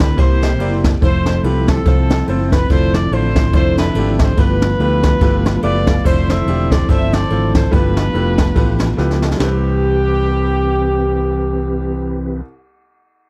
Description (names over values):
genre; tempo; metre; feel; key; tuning
uptempo gospel; 143 BPM; 4/4; swing 57% on 8ths; C major; A4 = 441 Hz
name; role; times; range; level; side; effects
warm horn section; melody; 0.0-12.4 s; C4 to E5; -23 LUFS; equal; none
clear concert grand piano; accompaniment; 0.0-12.4 s; C2 to B5; -26 LUFS; equal; none
mellow tonewheel organ; sustained chords; 0.0-12.4 s; D3 to B4; -24 LUFS; equal; slow rotary speaker, chorus vibrato
fingered electric bass; bass; 0.0-12.4 s; E1 to D2; -20 LUFS; equal; none
jazz brush drum kit; drums; 0.0-9.5 s; crash cymbal, kick drum, ride cymbal, snare drum; -18 LUFS; equal; none
room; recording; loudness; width
little or no reverb; dry, close 1970s-style studio recording; -15 LUFS; mono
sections
0.0-6.1 A section; 6.1-9.4 B section; 9.4-12.7 C section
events
grand piano fill 5.2-6.1; drum fill 9.0-9.4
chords
0.2 C7; 1.0 Fmaj7; 2.7 Dm9/F; 4.4 G13; 6.1 Dm9; 7.7 G13; 9.4 Cmaj7